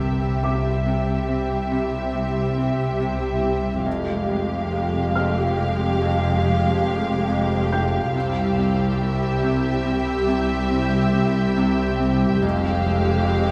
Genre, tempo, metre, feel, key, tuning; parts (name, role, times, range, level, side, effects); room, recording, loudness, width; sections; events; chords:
cinematic, suspense film score; 70 BPM; 5/4; straight; A4 = 440 Hz
muted studio violin section; melody; 0.0-13.5 s; E5 to F5; -33 LUFS; equal
muted symphonic violin section; second line; 0.0-13.5 s; G4; -31 LUFS; equal
muted symphonic viola section; accompaniment; 0.0-13.5 s; G3 to Ab3; -32 LUFS; equal
glass harmonica; sustained chords; 0.0-13.5 s; G4 to G5; -32 LUFS; equal
Celtic harp; riff; 0.0-13.5 s; F2 to C4; -31 LUFS; equal
muted symphonic cello section; bass; 0.0-13.5 s; C2 to C3; -29 LUFS; equal
muted symphonic double bass section; bass; 0.0-13.5 s; F1 to C2; -28 LUFS; equal
organ-like drone; drone; 1.2-13.5 s; C2 to F2; -32 LUFS; equal; ensemble chorus, built-in reverb
felt-muted upright piano; texture; 0.4-12.5 s; G5 to G6; -36 LUFS; equal
muted symphonic violin section; texture; 8.2-13.5 s; E6 to G6; -37 LUFS; equal
moderate scoring stage reverb, RT60 1.6 s; -22 LUFS; mono
0.0-13.5 A section
band accent 0.0-0.4
0.0 C; 3.9 Fmadd9; 8.1 C; 12.4 Fmadd9